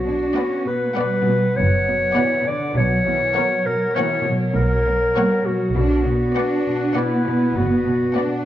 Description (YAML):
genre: cinematic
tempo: 100 BPM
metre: 5/4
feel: straight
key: B harmonic minor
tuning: A4 = 438 Hz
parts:
  - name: mellow clarinet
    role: second line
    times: 0.0-8.4 s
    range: E4 to D5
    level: -21 LUFS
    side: left 1 dB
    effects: none
  - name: warbly tape-like pad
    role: sustained chords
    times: 0.0-8.4 s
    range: A#4 to F#5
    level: -30 LUFS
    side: left 2 dB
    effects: chorus, built-in reverb
  - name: dark symphonic cello section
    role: bass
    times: 0.0-8.4 s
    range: D3 to D4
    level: -24 LUFS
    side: right 2 dB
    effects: none
  - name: warm studio double bass section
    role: bass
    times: 0.0-8.0 s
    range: F#1 to B1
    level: -23 LUFS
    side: right 1 dB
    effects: none
  - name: warm symphonic cello section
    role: riff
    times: 0.1-8.3 s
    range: B2 to B3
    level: -27 LUFS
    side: equal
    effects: none
  - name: warm symphonic violin section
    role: melody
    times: 0.4-8.4 s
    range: F#5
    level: -31 LUFS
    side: left 4 dB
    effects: none
  - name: warm symphonic violin section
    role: second line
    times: 0.4-8.4 s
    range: C#5 to D5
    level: -31 LUFS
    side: left 3 dB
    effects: none
  - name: warm symphonic viola section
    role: accompaniment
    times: 0.4-8.4 s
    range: A#3 to A#4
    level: -28 LUFS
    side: right 1 dB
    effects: none
room: moderate recital hall reverb, RT60 1.5 s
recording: dark, warm production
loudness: -17 LUFS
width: side -12 dB against mid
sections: 0.0-8.4 A section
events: none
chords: 0.0 Bm; 2.8 F#/B; 5.8 Bm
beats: 0.36 0.96 1.56 2.16 | 2.76 3.36 3.96 4.56 5.16 | 5.76 6.36 6.96 7.56 8.16